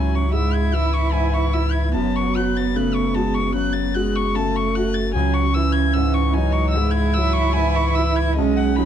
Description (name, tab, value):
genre	neoclassical piano and strings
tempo	74 BPM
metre	4/4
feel	rubato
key	C# minor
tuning	A4 = 442 Hz
part	dark violin	melody	0.0-8.9 s	D#5 to A6	-26 LUFS	left 4 dB	plate reverb
part	dark cello	second line	0.0-8.9 s	B3 to E4	-24 LUFS	right 7 dB	none
part	clear concert grand piano	accompaniment	0.0-8.9 s	B1 to F#4	-26 LUFS	left 6 dB	none
part	dark viola	accompaniment	0.0-8.9 s	E3 to A3	-26 LUFS	right 4 dB	none
part	warm sub bass	bass	0.0-8.9 s	F#1 to C#2	-21 LUFS	equal	none
room	light reverb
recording	dark, warm production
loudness	-17 LUFS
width	side -9 dB against mid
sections	0.0-8.9 A section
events	none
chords	0.0 C#m; 2.0 F#m; 5.2 C#m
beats	0.34 1.14 | 1.96 2.76 3.56 4.37 | 5.17 5.97 6.77 7.58 | 8.40